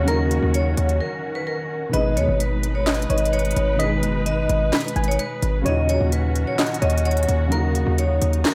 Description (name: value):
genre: hip hop, trap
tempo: 129 BPM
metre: 4/4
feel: half-time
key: G# minor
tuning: A4 = 441 Hz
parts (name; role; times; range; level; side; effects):
- vibraphone with hard mallets; melody; 0.0-8.5 s; A#4 to D#5; -28 LUFS; equal; none
- soft round pluck; second line; 0.0-8.0 s; A#4 to G#5; -31 LUFS; equal; chorus, tape echo
- dark baby grand piano; accompaniment; 0.0-8.5 s; A#2 to G#4; -30 LUFS; equal; ensemble chorus
- muted studio string section; sustained chords; 0.0-8.5 s; D#3 to B4; -32 LUFS; equal; none
- hard-hitting 808-style bass; bass; 0.0-8.4 s; F#1 to D#2; -24 LUFS; equal; none
- trap drum kit; drums; 0.1-8.5 s; handclaps, hi-hat, snare drum; -28 LUFS; equal; none
room: moderate plate reverb, RT60 1.3 s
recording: dreamy mix soaked in reverb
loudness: -21 LUFS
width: mono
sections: 0.0-8.5 A section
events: break 1.0-1.9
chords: 0.0 D#m7; 1.9 G#m; 5.7 D#m7